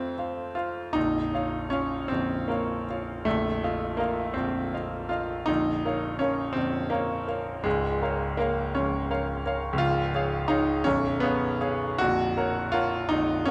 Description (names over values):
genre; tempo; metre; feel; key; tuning
classical, romantic character piece for solo piano; 51-59 BPM (dotted quarters); 6/8; rubato; Bb minor, Db major from 9.8 s; A4 = 440 Hz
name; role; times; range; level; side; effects
clear grand piano; solo; 0.0-13.5 s; Bb0 to Gb5; -27 LUFS; equal; none
room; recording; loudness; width
wet scoring stage reverb, RT60 1.7 s; none; -28 LUFS; mono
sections
1.0-13.5 A section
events
none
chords
0.0 F; 1.0 Bbm; 3.3 F7/Bb; 5.5 Bbm; 7.7 Bbm/Db; 9.8 Db; 10.9 Db7/Cb; 12.0 Gb/Bb